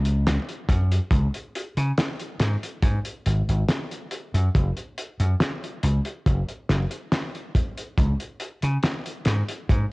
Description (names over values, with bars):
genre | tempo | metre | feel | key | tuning
vaporwave | 70 BPM | 4/4 | straight | unclear | A4 = 440 Hz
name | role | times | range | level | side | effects
vintage slap bass | bass | 0.0-9.8 s | F#1 to C#3 | -22 LUFS | equal | tube saturation
cloth-damped thuddy drum kit | drums | 0.1-9.9 s | hi-hat, snare drum | -27 LUFS | equal | none
kick drum | drums | 0.7-9.9 s | none | -22 LUFS | equal | none
room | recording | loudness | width
little or no reverb | cassette tape, nothing above 10.5 kHz | -22 LUFS | side -26 dB against mid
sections
0.0-9.9 A section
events
none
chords
none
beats
0.26 | 1.12 1.98 2.83 3.69 | 4.55 5.41 6.26 7.12 | 7.98 8.83 9.69